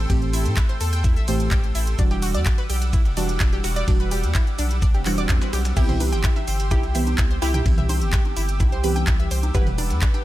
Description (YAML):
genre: progressive house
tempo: 127 BPM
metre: 4/4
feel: straight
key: E minor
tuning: A4 = 440 Hz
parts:
  - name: supersaw pad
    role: sustained chords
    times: 0.0-10.2 s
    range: G3 to E6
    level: -34 LUFS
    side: right 2 dB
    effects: sidechain pumping
  - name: deep mellow chord stab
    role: stabs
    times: 0.0-10.2 s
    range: A2 to F#5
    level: -28 LUFS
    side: right 2 dB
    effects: chorus, sidechain pumping, ping-pong delay
  - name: saturated sub bass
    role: bass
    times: 0.0-10.0 s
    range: E1 to A2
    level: -23 LUFS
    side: equal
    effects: sidechain pumping
  - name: analog pluck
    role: arpeggios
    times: 0.1-10.2 s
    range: D4 to G6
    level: -32 LUFS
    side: equal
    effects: chorus, sidechain pumping, ping-pong delay
  - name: dusty soul sampler-style drum kit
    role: drums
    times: 0.1-10.2 s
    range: hi-hat, shaker, snare drum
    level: -38 LUFS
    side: right 1 dB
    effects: none
  - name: electronic kick drum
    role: drums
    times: 0.1-10.1 s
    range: none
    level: -20 LUFS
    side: equal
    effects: none
  - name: pop drum kit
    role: drums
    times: 0.1-10.2 s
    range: crash cymbal, handclaps, hi-hat, ride cymbal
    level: -31 LUFS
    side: right 1 dB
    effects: none
  - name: swell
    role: sound effects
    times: 4.9-5.8 s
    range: none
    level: -35 LUFS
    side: right 2 dB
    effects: none
  - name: wide unison pluck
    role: melody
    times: 5.8-10.2 s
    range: E4 to B4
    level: -30 LUFS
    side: left 1 dB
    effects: sidechain pumping, ping-pong delay
  - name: airy dreamy lead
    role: second line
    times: 5.8-10.2 s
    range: G4 to B4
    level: -35 LUFS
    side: equal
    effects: chorus, sidechain pumping, ping-pong delay
  - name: electronic toms and congas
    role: percussion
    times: 5.9-10.2 s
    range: none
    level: -33 LUFS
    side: right 2 dB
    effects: overdrive, sidechain pumping on toms, sidechain pumping on perc
room: little or no reverb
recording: none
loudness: -18 LUFS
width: side -15 dB against mid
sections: 0.0-10.2 A section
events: swell 4.9-5.8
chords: 0.0 Am7; 2.0 Em9; 5.8 Cmaj7; 9.5 Em9